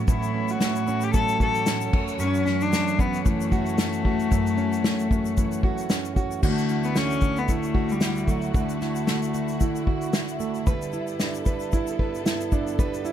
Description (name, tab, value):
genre	acoustic pop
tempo	113 BPM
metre	4/4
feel	swing 55% on 16ths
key	D major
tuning	A4 = 443 Hz
part	fingerpicked plugged-in steel-string acoustic guitar	accompaniment	0.0-13.1 s	F#2 to B4	-27 LUFS	right 6 dB	none
part	warm studio string section	sustained chords	0.0-13.1 s	D2 to C#5	-34 LUFS	left 2 dB	none
part	warm cello	melody	0.1-10.1 s	F#3 to A4	-27 LUFS	left 6 dB	digital delay
part	unplugged drum kit	drums	0.1-13.1 s	crash cymbal, kick drum, shaker, snare drum	-25 LUFS	equal	none
part	egg shaker	percussion	0.1-13.1 s	none	-42 LUFS	left 16 dB	none
room	little or no reverb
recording	dark, warm production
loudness	-22 LUFS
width	side -10 dB against mid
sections	0.0-6.4 A section; 6.4-13.1 B section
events	none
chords	0.0 A6; 1.9 F#m7; 6.4 Dadd9; 10.7 G6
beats	| 0.08 0.61 1.14 1.67 | 2.20 2.73 3.25 3.78 | 4.31 4.84 5.37 5.90 | 6.43 6.96 7.49 8.02 | 8.55 9.08 9.61 10.14 | 10.67 11.20 11.73 12.26 | 12.79